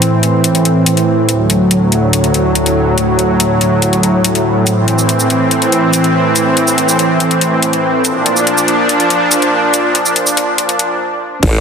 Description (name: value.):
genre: heavy wobble dubstep.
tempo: 142 BPM.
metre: 4/4.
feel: half-time.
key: unclear.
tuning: A4 = 440 Hz.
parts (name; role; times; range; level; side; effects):
supersaw pad; sustained chords; 0.0-11.0 s; D2 to D4; -11 LUFS; equal; sidechain pumping.
big-room dance drum kit; drums; 0.0-11.5 s; crash cymbal, hi-hat, shaker; -16 LUFS; left 2 dB; none.
formant-sweep wobble bass; bass; 11.4-11.6 s; A1; -11 LUFS; equal; chorus, overdrive.
electronic kick drum; drums; 11.4-11.5 s; none; -14 LUFS; equal; none.
room: moderate lush hall reverb, RT60 2.1 s.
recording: dense, heavily limited modern master, high-pass filter.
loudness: -10 LUFS.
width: side -6 dB against mid.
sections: 0.0-11.4 A section.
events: build-up 0.0-11.4; filter sweep 0.0-11.4; stop 11.0-11.4.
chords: 0.0 Am; 1.3 D; 4.7 Am; 8.0 Bb.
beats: 0.02 0.44 0.86 | 1.29 1.71 2.13 2.55 | 2.98 3.40 3.82 4.24 | 4.67 5.09 5.51 5.93 | 6.36 6.78 7.20 7.62 | 8.05 8.47 8.89 9.31 | 9.74 10.16 10.58 11.01 | 11.43.